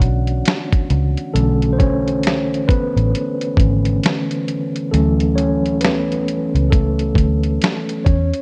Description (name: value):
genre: lo-fi hip hop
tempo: 67 BPM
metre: 4/4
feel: swing 60% on 16ths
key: unclear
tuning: A4 = 439 Hz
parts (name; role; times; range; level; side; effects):
- mellow tine electric piano; accompaniment; 0.0-8.4 s; D3 to F#5; -21 LUFS; equal; cassette tape
- vintage muted fingered electric bass; bass; 0.0-8.3 s; G#1 to E2; -20 LUFS; equal; none
- dusty soul sampler-style drum kit; drums; 0.0-8.4 s; finger snaps, hi-hat, kick drum, snare drum; -20 LUFS; equal; vintage 12-bit sampler grit
room: light reverb, digital ambience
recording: cassette tape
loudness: -17 LUFS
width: mono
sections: 0.0-8.4 A section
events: tine electric piano solo 0.0-8.4; kick muted 4.9-6.7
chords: 0.0 Bm11; 4.9 Dmaj9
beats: 0.45 | 1.35 2.24 3.14 4.04 | 4.93 5.83 6.72 7.62